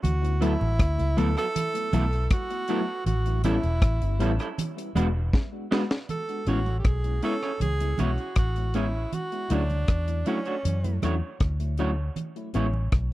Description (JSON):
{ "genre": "lovers rock reggae", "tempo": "79 BPM", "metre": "4/4", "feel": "straight", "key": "A major", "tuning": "A4 = 440 Hz", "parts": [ { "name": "breathy tenor saxophone", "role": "melody", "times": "0.0-11.0 s", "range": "C#4 to A4", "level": "-32 LUFS", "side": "right 2 dB", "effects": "tape echo" }, { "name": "vintage muted fingered electric bass", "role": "bass", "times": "0.0-13.1 s", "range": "E1 to F#2", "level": "-25 LUFS", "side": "equal", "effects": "none" }, { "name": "deep reggae drum kit", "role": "drums", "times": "0.0-13.1 s", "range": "hi-hat, kick drum, rim click, snare drum", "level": "-25 LUFS", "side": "equal", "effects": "none" }, { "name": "congas", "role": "percussion", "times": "0.0-12.9 s", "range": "none", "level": "-32 LUFS", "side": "right 4 dB", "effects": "none" }, { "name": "mellow FM electric piano", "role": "accompaniment", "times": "0.4-12.7 s", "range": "F#3 to F#4", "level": "-31 LUFS", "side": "left 2 dB", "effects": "chorus, tremolo, tape echo" }, { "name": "electric guitar through a small old amp", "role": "stabs", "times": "0.4-12.7 s", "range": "F#3 to C#5", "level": "-33 LUFS", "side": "right 4 dB", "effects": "spring reverb" } ], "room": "little or no reverb", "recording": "dry, close 1970s-style studio recording", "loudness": "-24 LUFS", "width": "side -16 dB against mid", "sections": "0.0-6.1 A section; 6.1-13.1 B section", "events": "drum fill 5.3-6.1", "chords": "0.0 D69; 3.1 A7; 4.6 E9; 6.1 Amaj7; 9.1 Dmaj7; 12.2 Amaj7", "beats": "| 0.03 0.79 1.55 2.30 | 3.06 3.82 4.57 5.33 | 6.09 6.85 7.61 8.37 | 9.13 9.88 10.64 11.40 | 12.16 12.92" }